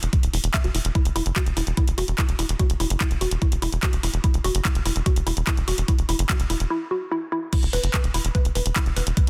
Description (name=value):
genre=psychedelic trance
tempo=146 BPM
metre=4/4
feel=straight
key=unclear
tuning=A4 = 440 Hz
part: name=tight sequencer bass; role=bass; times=0.0-9.3 s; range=D1 to F#1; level=-27 LUFS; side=equal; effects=none
part: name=drum and bass drum kit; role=drums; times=0.0-9.3 s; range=crash cymbal, handclaps, hi-hat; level=-31 LUFS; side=equal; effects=studio reverb
part: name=woody wave-folded pluck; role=riff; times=0.1-9.2 s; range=E4 to E5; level=-32 LUFS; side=equal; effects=chorus, sidechain pumping, dub echo
part: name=electronic kick drum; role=drums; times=0.1-9.3 s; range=none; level=-24 LUFS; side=equal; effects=studio reverb
room=little or no reverb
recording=dense, heavily limited modern master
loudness=-23 LUFS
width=mono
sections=0.0-7.5 A section; 7.5-9.3 B section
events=break 6.7-7.5; drop 7.5-9.3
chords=0.0 Dadd9 (rootless); 7.5 E5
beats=0.13 0.54 | 0.95 1.36 1.77 2.18 | 2.60 3.01 3.42 3.83 | 4.24 4.65 5.06 5.47 | 5.88 6.29 6.71 7.12 | 7.53 7.94 8.35 8.76 | 9.17